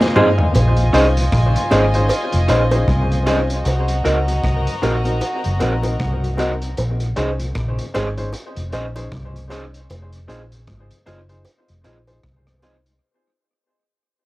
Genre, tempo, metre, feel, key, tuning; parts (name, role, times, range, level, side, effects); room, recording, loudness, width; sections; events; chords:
lovers rock reggae; 77 BPM; 4/4; swing 59% on 16ths; Bb minor; A4 = 438 Hz
warm studio violin section; second line; 0.0-6.7 s; F4 to Bb5; -25 LUFS; equal; cassette tape
clear grand piano; accompaniment; 0.0-12.8 s; C4 to C5; -23 LUFS; left 1 dB; cassette tape, tape echo
mellow tonewheel organ; accompaniment; 0.0-12.9 s; F2 to Eb4; -31 LUFS; left 2 dB
crunchy breakbeat drum kit; drums; 0.0-13.0 s; hi-hat, kick drum, rim click, snare drum, toms; -24 LUFS; equal; cassette tape, tape echo
bongos; percussion; 0.0-12.8 s; -28 LUFS; right 1 dB; tape echo
electric guitar through a small old amp; stabs; 0.2-12.8 s; C4 to Eb5; -22 LUFS; right 2 dB; cassette tape
vintage muted fingered electric bass; bass; 0.6-13.0 s; F1 to Db2; -19 LUFS; equal
light reverb; home recording on cassette; -16 LUFS; side -18 dB against mid
0.5-13.0 A section
drum fill 0.0-0.5; fade-out 0.5-13.0
0.0 Fm7; 0.5 Bbm11; 3.7 Cm7b5; 6.8 Bbm11; 9.9 Fm7